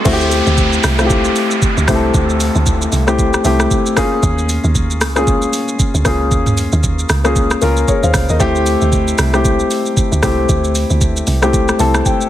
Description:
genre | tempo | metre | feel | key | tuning
amapiano | 115 BPM | 4/4 | swing 58% on 16ths | D minor | A4 = 440 Hz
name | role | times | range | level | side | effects
dark baby grand piano | accompaniment | 0.0-12.3 s | A3 to A5 | -15 LUFS | left 2 dB | none
riser and downlifter | sound effects | 0.0-4.2 s | none | -22 LUFS | right 2 dB | none
deep log drum bass | bass | 0.1-12.0 s | C2 to Eb2 | -16 LUFS | right 1 dB | none
smooth R&B drum kit | drums | 0.1-12.3 s | crash cymbal, hi-hat, kick drum, rim click, shaker, toms | -17 LUFS | right 1 dB | none
room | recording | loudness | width
little or no reverb | heavily compressed radio sound, multiband compression | -12 LUFS | side -12 dB against mid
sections
0.1-12.3 A section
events
drop 0.1-12.3; grand piano fill 11.5-12.3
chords
0.1 D9sus4; 4.0 Eb9sus4; 8.4 D9sus4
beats
| 0.06 0.58 1.10 1.62 | 2.14 2.66 3.19 3.71 | 4.23 4.75 5.27 5.79 | 6.32 6.84 7.36 7.88 | 8.40 8.93 9.45 9.97 | 10.49 11.01 11.53 12.05

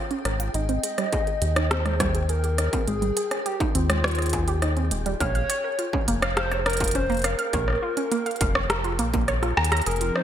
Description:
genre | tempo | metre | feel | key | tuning
IDM | 103 BPM | 4/4 | straight | Bb dorian | A4 = 439 Hz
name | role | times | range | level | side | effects
warbly dusty pluck | arpeggios | 0.0-10.2 s | G3 to Bb5 | -29 LUFS | right 3 dB | chorus, ping-pong delay
flickering grainy texture | texture | 0.0-9.9 s | Ab4 to G5 | -39 LUFS | left 1 dB | built-in reverb, lush chorus
industrial drum kit | drums | 0.1-10.2 s | hi-hat, rim click | -27 LUFS | equal | none
round analog bass | bass | 0.2-10.1 s | Eb1 to Eb2 | -26 LUFS | equal | none
warbly nostalgic lead | melody | 0.5-10.2 s | F4 to Eb5 | -29 LUFS | left 1 dB | chorus, cassette tape, digital delay
electronic kick drum | drums | 1.1-9.3 s | none | -28 LUFS | left 1 dB | distortion
room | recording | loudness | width
light reverb, digital ambience | bright 1980s-style digital production | -22 LUFS | side -10 dB against mid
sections
0.0-9.9 A section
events
drum fill 9.4-9.9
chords
0.0 Bbm (rootless); 0.5 Abmaj7; 5.2 Bbm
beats
| 0.54 1.13 1.71 2.29 | 2.87 3.46 4.04 4.62 | 5.20 5.79 6.37 6.95 | 7.54 8.12 8.70 9.28 | 9.87

